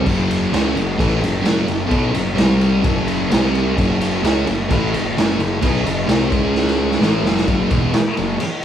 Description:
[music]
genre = garage rock duo or trio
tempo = 129 BPM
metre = 4/4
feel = straight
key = unclear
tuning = A4 = 440 Hz
[part]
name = thick fuzz guitar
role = riff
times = 0.0-8.4 s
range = E2 to C#4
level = -19 LUFS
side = equal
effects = distortion
[part]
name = fuzz picked electric bass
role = bass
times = 0.0-8.4 s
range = E1 to C#2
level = -23 LUFS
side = equal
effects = overdrive
[part]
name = raw garage drum kit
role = drums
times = 0.1-8.6 s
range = crash cymbal, kick drum, ride cymbal, snare drum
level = -19 LUFS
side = equal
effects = none
[sound]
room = moderate large studio reverb, RT60 1.0 s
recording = band playing live in one room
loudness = -15 LUFS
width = side -9 dB against mid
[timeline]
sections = 0.0-7.5 A section; 7.5-8.6 B section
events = drum fill 6.6-7.5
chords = 0.1 F#5; 2.4 C5; 2.8 F#5; 3.3 C5; 3.8 F#5; 6.3 C#5; 7.0 F#5

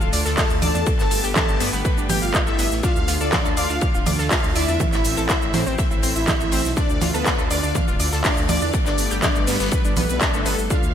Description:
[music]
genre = melodic techno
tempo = 122 BPM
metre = 4/4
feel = straight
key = D dorian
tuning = A4 = 440 Hz
[part]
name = lush unison pad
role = sustained chords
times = 0.0-10.9 s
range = D3 to G4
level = -29 LUFS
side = equal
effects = chorus, sidechain pumping
[part]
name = analog pluck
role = arpeggios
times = 0.0-10.8 s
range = B3 to F5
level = -28 LUFS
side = left 1 dB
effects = chorus, sidechain pumping, ping-pong delay
[part]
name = dark detuned saw bass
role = bass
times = 0.0-10.9 s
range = D1 to A2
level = -25 LUFS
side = equal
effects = sidechain pumping
[part]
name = techno drum kit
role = drums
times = 0.0-10.9 s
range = congas, handclaps, hi-hat, shaker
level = -24 LUFS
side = right 1 dB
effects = overdrive, sidechain pumping on perc, sidechain pumping on hats, gated reverb
[part]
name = loose indie drum kit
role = drums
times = 0.1-10.8 s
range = hi-hat, ride cymbal, snare drum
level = -33 LUFS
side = left 1 dB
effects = high-pass filter on cymbals, high-pass filter on hats, high-pass filter on snare, high-pass filter on room, gated reverb
[part]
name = expressive synth lead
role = melody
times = 0.4-10.9 s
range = A3 to A4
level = -28 LUFS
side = equal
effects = ensemble chorus, sidechain pumping, ping-pong delay
[part]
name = big bright polysynth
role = second line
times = 0.4-10.9 s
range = A4 to A5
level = -30 LUFS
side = left 1 dB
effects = vintage 12-bit sampler grit, sidechain pumping, ping-pong delay
[part]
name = electronic kick drum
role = drums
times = 0.4-10.8 s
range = none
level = -22 LUFS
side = equal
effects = none
[part]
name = swell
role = sound effects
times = 10.0-10.7 s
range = none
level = -34 LUFS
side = left 4 dB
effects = none
[sound]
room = light reverb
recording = bright 1980s-style digital production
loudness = -18 LUFS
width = side -9 dB against mid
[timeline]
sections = 0.0-10.9 A section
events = swell 10.0-10.7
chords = 0.0 Dm; 0.9 Gadd9; 2.8 Dm; 4.8 Am; 6.8 Dm; 8.7 Gadd9

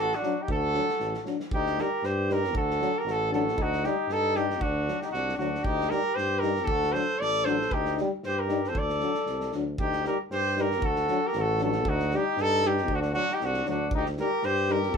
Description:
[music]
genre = balkan folk, Balkan brass band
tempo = 116 BPM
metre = 2/4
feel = swing 56% on 16ths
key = D phrygian dominant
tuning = A4 = 438 Hz
[part]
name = clear trumpet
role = melody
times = 0.0-15.0 s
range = F#4 to D5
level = -28 LUFS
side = right 1 dB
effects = none
[part]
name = warm flugelhorn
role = second line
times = 0.0-15.0 s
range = D4 to A4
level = -32 LUFS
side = left 4 dB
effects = none
[part]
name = mellow tuba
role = bass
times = 0.0-15.0 s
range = A1 to G2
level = -32 LUFS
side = right 1 dB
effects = none
[part]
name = loose indie drum kit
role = percussion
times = 0.1-15.0 s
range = kick drum, snare drum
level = -37 LUFS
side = equal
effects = none
[part]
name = clear euphonium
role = accompaniment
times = 0.2-14.8 s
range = F#3 to G3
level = -34 LUFS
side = equal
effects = none
[part]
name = warm euphonium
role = accompaniment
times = 0.2-14.8 s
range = D4 to Eb4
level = -34 LUFS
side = left 7 dB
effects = none
[sound]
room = moderate small room ambience, RT60 0.5 s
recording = band playing live in one room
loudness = -25 LUFS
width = side -6 dB against mid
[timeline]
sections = 0.0-1.5 A section; 1.5-9.8 B section; 9.8-15.0 B section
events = none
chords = 0.0 D; 1.5 Cm9/D; 2.6 D; 3.6 Ebmaj7#11/D; 4.6 D; 5.6 Cm9/D; 6.7 D; 7.7 Cm9/D; 8.7 D; 9.8 Cm9/D; 10.8 D; 11.9 Ebmaj7#11/D; 12.9 D; 13.9 Cm9/D

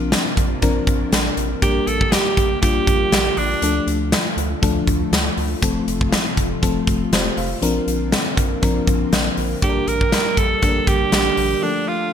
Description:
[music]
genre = 1980s-style pop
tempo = 120 BPM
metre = 4/4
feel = swing 55% on 16ths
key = unclear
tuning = A4 = 439 Hz
[part]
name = FM electric piano with soft pad layer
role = accompaniment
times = 0.0-12.1 s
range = F3 to F5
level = -23 LUFS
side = left 4 dB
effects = chorus, tremolo
[part]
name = string machine, full ensemble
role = sustained chords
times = 0.0-12.1 s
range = C3 to G4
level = -28 LUFS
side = equal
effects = ensemble chorus
[part]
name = rubbery square bass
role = bass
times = 0.0-11.6 s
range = F1 to D2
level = -25 LUFS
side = equal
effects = none
[part]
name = big rock drum kit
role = drums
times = 0.1-11.5 s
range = hi-hat, kick drum, snare drum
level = -20 LUFS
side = equal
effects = gated reverb
[part]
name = edgy alto saxophone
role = melody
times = 1.6-3.9, 9.6-12.1 s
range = D4 to Bb4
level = -21 LUFS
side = right 4 dB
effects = ping-pong delay
[sound]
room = moderate plate reverb, RT60 1.1 s, studio reverb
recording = bright 1980s-style digital production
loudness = -16 LUFS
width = side -8 dB against mid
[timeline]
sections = 0.0-12.1 A section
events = break 11.6-12.1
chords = 0.0 Bbadd9; 1.6 Gm/Bb; 3.6 Dm; 5.6 F; 7.6 Bbadd9; 9.6 Gm/Bb; 11.6 Dm

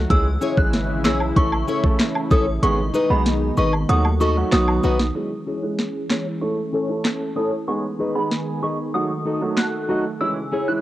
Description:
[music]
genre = dancehall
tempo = 95 BPM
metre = 4/4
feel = straight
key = C# minor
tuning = A4 = 438 Hz
[part]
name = lush unison pad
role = sustained chords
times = 0.0-10.8 s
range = B2 to A4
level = -27 LUFS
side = equal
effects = chorus, sidechain pumping, low-pass filter, cassette tape
[part]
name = hard-hitting 808-style bass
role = bass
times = 0.0-5.1 s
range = G#1 to D#2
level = -21 LUFS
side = equal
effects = none
[part]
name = synth chime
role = melody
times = 0.1-10.8 s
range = B5 to F#6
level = -26 LUFS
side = right 1 dB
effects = ensemble chorus, low-pass filter, cassette tape, analog delay
[part]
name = clear baby grand piano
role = accompaniment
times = 0.1-10.8 s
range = E3 to A4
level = -25 LUFS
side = right 2 dB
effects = sidechain pumping, low-pass filter, cassette tape
[part]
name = island pop drum kit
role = drums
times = 0.1-9.7 s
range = handclaps, hi-hat, kick drum, rim click, snare drum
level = -20 LUFS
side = equal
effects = overdrive, cassette tape
[part]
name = picked plugged-in old ladder-braced acoustic guitar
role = arpeggios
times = 0.4-10.7 s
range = C#4 to D#5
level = -25 LUFS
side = left 3 dB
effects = low-pass filter, cassette tape, analog delay
[part]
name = cabasa and woodblock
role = percussion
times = 0.4-5.0 s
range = none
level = -28 LUFS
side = right 1 dB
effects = none
[sound]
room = light reverb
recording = home recording on cassette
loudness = -18 LUFS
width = side -14 dB against mid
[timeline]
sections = 0.0-5.2 A section; 5.2-10.8 B section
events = kick muted 2.6-5.2; filter sweep 5.2-10.8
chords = 0.1 C#m; 1.4 A; 2.6 G#m; 3.9 D#dim; 4.5 B; 5.2 C#m; 6.4 A; 7.7 G#m; 8.9 D#dim; 10.2 C#m

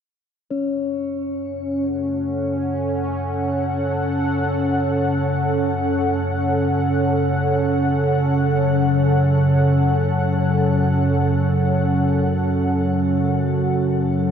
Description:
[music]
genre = dark ambient drone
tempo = free time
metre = none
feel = none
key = F# minor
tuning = A4 = 440 Hz
[part]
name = sweeping resonant pad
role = sustained chords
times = 0.5-14.3 s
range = C#4 to F#5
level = -22 LUFS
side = right 1 dB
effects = chorus, shimmer reverb
[part]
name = analog drone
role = drone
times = 1.4-14.3 s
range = F#2 to C#3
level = -20 LUFS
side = equal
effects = chorus
[part]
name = bronze singing bowl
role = texture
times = 0.5-14.3 s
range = C#4 to C#5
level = -29 LUFS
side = left 3 dB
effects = shimmer reverb
[sound]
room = wet huge ambient reverb, RT60 8.2 s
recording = dreamy mix soaked in reverb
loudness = -18 LUFS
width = side -8 dB against mid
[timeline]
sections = 0.5-14.3 A section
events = fade-out on analog synth pad 0.5-14.3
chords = 0.5 F#m

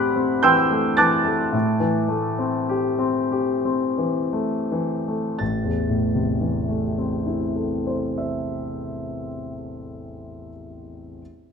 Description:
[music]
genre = classical, impressionist solo piano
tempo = 38-57 BPM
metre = 3/4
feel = rubato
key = A dorian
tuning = A4 = 440 Hz
[part]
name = clear concert grand piano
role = solo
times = 0.0-11.2 s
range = A1 to A6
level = -21 LUFS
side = left 1 dB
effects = none
[sound]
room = moderate scoring stage reverb, RT60 2.0 s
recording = none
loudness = -20 LUFS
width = side -6 dB against mid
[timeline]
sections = 0.0-5.4 A section; 5.4-9.0 B section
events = slowing down 0.0-5.4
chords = 0.0 D69/A; 5.4 Am

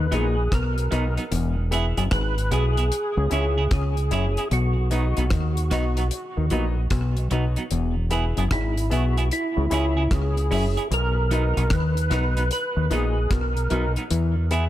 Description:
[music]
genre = roots reggae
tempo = 75 BPM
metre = 4/4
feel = swing 65% on 16ths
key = unclear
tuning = A4 = 440 Hz
[part]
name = percussive tonewheel organ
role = melody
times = 0.0-13.9 s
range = E4 to B4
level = -28 LUFS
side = right 1 dB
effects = chorus vibrato, slow rotary speaker, tape echo
[part]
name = overdriven clav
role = riff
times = 0.0-14.3 s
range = E2 to E3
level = -31 LUFS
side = left 6 dB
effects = none
[part]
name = dark grand piano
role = stabs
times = 0.0-14.7 s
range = D#4 to E5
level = -34 LUFS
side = left 4 dB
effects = none
[part]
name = deep dub fingered electric bass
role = bass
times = 0.0-14.7 s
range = E1 to E2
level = -23 LUFS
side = equal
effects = none
[part]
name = clean electric guitar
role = accompaniment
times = 0.1-14.6 s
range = F#3 to G#4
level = -31 LUFS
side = right 5 dB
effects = tape echo
[part]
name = deep reggae drum kit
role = drums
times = 0.1-14.7 s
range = hi-hat, kick drum, rim click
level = -28 LUFS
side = equal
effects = none
[sound]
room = small room ambience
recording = none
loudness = -20 LUFS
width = side -13 dB against mid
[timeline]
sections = 0.0-14.7 A section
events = none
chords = 0.0 B; 1.3 E; 2.9 C#m; 4.5 B; 7.7 E; 9.3 C#m; 10.9 B; 14.1 E

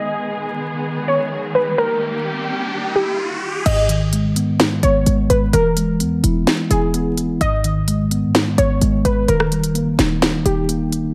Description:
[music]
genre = hip hop, trap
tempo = 128 BPM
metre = 4/4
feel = half-time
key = G# harmonic minor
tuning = A4 = 439 Hz
[part]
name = warbly dusty pluck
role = melody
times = 0.0-11.1 s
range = G4 to D#5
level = -23 LUFS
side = equal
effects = chorus, low-pass filter, digital delay
[part]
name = dark symphonic string section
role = sustained chords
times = 0.0-3.6 s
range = D#3 to G#4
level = -27 LUFS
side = equal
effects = low-pass filter
[part]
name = riser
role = sound effects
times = 1.1-3.7 s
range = none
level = -30 LUFS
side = equal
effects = none
[part]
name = mellow tine electric piano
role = accompaniment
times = 3.7-11.1 s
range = G#2 to E4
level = -21 LUFS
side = equal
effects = low-pass filter
[part]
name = short 808-style bass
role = bass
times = 3.7-11.1 s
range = D#1 to G#2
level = -23 LUFS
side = equal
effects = none
[part]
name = trap drum kit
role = drums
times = 3.7-11.0 s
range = crash cymbal, hi-hat, rim click, snare drum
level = -22 LUFS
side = equal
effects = none
[sound]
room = light reverb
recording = vinyl crackle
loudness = -18 LUFS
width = mono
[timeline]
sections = 0.0-3.7 A section; 3.7-11.1 B section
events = riser 1.1-3.7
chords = 0.0 G#m; 1.8 D#; 3.7 G#m; 5.5 E; 7.4 G#m; 9.3 D#

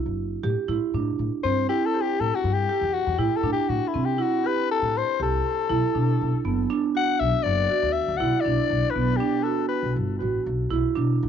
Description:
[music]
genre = progressive instrumental, band music in an uneven meter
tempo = 120 BPM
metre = 5/4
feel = straight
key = A dorian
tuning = A4 = 443 Hz
[part]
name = marimba with medium hard mallets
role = arpeggios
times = 0.0-11.3 s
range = B3 to G4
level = -26 LUFS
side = right 8 dB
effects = cassette tape
[part]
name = upright bass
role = bass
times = 0.1-11.3 s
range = F#1 to C3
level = -27 LUFS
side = left 2 dB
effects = none
[part]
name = growling soprano saxophone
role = melody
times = 1.4-9.9 s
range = E4 to F#5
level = -25 LUFS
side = left 9 dB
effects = cassette tape, plate reverb, analog delay
[sound]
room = light reverb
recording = home recording on cassette, nothing above 7.6 kHz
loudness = -22 LUFS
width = side -8 dB against mid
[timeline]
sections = 0.7-11.3 A section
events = soprano saxophone solo 0.7-11.3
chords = 0.0 A5; 0.7 Am7; 5.7 Gmaj7 (rootless); 10.7 Bm

